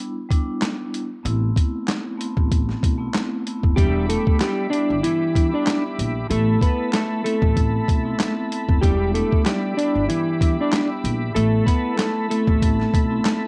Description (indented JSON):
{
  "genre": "hip hop, boom-bap hip-hop",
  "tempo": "95 BPM",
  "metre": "4/4",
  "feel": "swing 56% on 16ths",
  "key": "E minor",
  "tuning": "A4 = 440 Hz",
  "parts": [
    { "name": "vibraphone with soft mallets", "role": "accompaniment", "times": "0.0-13.5 s", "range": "G3 to E4", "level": "-30 LUFS", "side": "equal", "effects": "cassette tape, high-pass filter, low-pass filter" },
    { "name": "boom bap sampler-style drum kit", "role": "drums", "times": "0.3-13.4 s", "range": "handclaps, hi-hat, kick drum, snare drum", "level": "-23 LUFS", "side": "equal", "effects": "cassette tape" },
    { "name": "upright bass", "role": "bass", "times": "1.2-13.2 s", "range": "E1 to B1", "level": "-26 LUFS", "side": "equal", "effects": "none" },
    { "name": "semi-hollow electric guitar", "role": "melody", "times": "3.8-13.4 s", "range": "E3 to D5", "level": "-25 LUFS", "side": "equal", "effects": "high-pass filter, low-pass filter" },
    { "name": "tonewheel organ", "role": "sustained chords", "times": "3.8-13.5 s", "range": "G4 to D6", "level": "-33 LUFS", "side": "equal", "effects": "chorus vibrato, subtle chorus, high-pass filter, low-pass filter, cassette tape" }
  ],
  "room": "little or no reverb",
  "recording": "home recording on cassette",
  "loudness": "-21 LUFS",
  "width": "mono",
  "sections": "0.0-3.8 A section; 3.8-13.5 B section",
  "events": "break 0.0-1.2",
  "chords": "0.0 Em7; 1.2 Amadd9; 3.8 Em7; 6.3 Amadd9; 8.8 Em7; 11.4 Amadd9",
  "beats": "0.62 | 1.25 1.88 2.51 3.14 | 3.77 4.41 5.04 5.67 | 6.30 6.93 7.57 8.20 | 8.83 9.46 10.09 10.72 | 11.35 11.99 12.62 13.25"
}